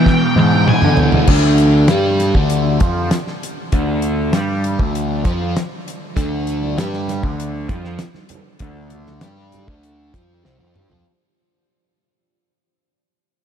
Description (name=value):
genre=psychedelic rock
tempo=98 BPM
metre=4/4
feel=straight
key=unclear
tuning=A4 = 439 Hz
part: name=octave-fuzz lead guitar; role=melody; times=0.0-1.0 s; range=G5 to G#5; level=-24 LUFS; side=equal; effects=wah, distortion, analog delay
part: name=fuzz guitar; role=riff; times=0.0-11.0 s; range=E2 to G4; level=-18 LUFS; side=equal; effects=distortion, phaser
part: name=fuzz picked electric bass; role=bass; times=0.0-11.0 s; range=C2 to E3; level=-20 LUFS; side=equal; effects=overdrive
part: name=damped 70s drum kit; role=drums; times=0.1-11.1 s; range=crash cymbal, hi-hat, kick drum, snare drum, toms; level=-19 LUFS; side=equal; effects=none
part: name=congas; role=percussion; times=0.5-1.3, 6.6-10.9 s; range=none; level=-33 LUFS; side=right 8 dB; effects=none
room=light reverb, studio reverb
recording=none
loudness=-14 LUFS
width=side -8 dB against mid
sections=0.0-1.3 A section; 1.3-11.1 B section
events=lead electric guitar solo 0.0-1.3; drum fill 0.1-1.3, 10.4-11.1; fade-out 1.3-11.1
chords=0.0 E; 1.3 Csus4 (rootless)